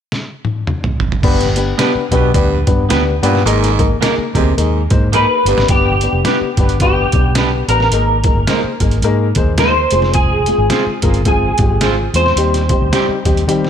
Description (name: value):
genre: uptempo 1960s-style soul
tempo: 108 BPM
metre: 4/4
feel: swing 59% on 8ths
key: unclear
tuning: A4 = 440 Hz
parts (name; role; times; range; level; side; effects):
- trip hop sampler-style drum kit; drums; 0.1-13.7 s; crash cymbal, hi-hat, kick drum, snare drum, toms; -17 LUFS; right 1 dB; overdrive
- dark upright piano; accompaniment; 1.2-13.7 s; G3 to C5; -18 LUFS; left 5 dB; none
- breathy baritone saxophone; riff; 1.2-5.6 s; G2 to C3; -22 LUFS; right 7 dB; none
- vintage muted fingered electric bass; bass; 1.2-13.7 s; F1 to Eb3; -17 LUFS; equal; none
- electric guitar at the edge of break-up; stabs; 1.8-13.1 s; Ab3 to C5; -23 LUFS; right 8 dB; tape echo
- electric guitar through a small old amp; melody; 5.2-13.7 s; G4 to C5; -17 LUFS; equal; ensemble chorus
room: light reverb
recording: none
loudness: -12 LUFS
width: side -8 dB against mid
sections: 0.0-1.2 A section; 1.2-5.7 B section; 5.7-13.7 C section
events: drum fill 0.1-1.2, 5.1-5.7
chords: 0.0 N.C.; 1.2 G; 3.5 Absus2; 5.4 G; 7.9 Absus2; 9.9 Fm; 12.4 Cm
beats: 0.12 0.68 | 1.23 1.79 2.35 2.90 | 3.46 4.02 4.58 5.13 | 5.69 6.25 6.80 7.36 | 7.92 8.47 9.03 9.59 | 10.14 10.70 11.26 11.81 | 12.37 12.93 13.48